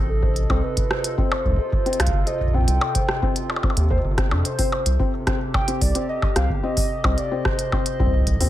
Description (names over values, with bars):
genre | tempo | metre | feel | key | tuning
IDM | 110 BPM | 4/4 | straight | unclear | A4 = 439 Hz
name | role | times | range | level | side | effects
hollow soft pad | sustained chords | 0.0-8.5 s | C3 to Eb5 | -31 LUFS | right 1 dB | chorus, vintage 12-bit sampler grit
round analog bass | bass | 0.0-8.5 s | G1 to F2 | -21 LUFS | equal | none
warbly nostalgic lead | melody | 0.1-8.5 s | A4 to G5 | -28 LUFS | right 1 dB | chorus, dub echo
felt-muted upright piano | arpeggios | 0.2-8.5 s | C4 to C5 | -29 LUFS | left 4 dB | digital delay
electronic kick drum | drums | 0.2-8.5 s | none | -23 LUFS | equal | none
glitchy drum kit | drums | 0.4-8.5 s | hi-hat, percussion blips, rim click | -26 LUFS | equal | none
room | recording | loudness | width
digital ambience | none | -19 LUFS | side -13 dB against mid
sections
0.0-8.5 A section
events
none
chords
0.0 Cm6; 4.5 F7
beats
| 0.09 0.63 1.18 1.72 | 2.27 2.81 3.36 3.91 | 4.45 5.00 5.54 6.09 | 6.63 7.18 7.72 8.27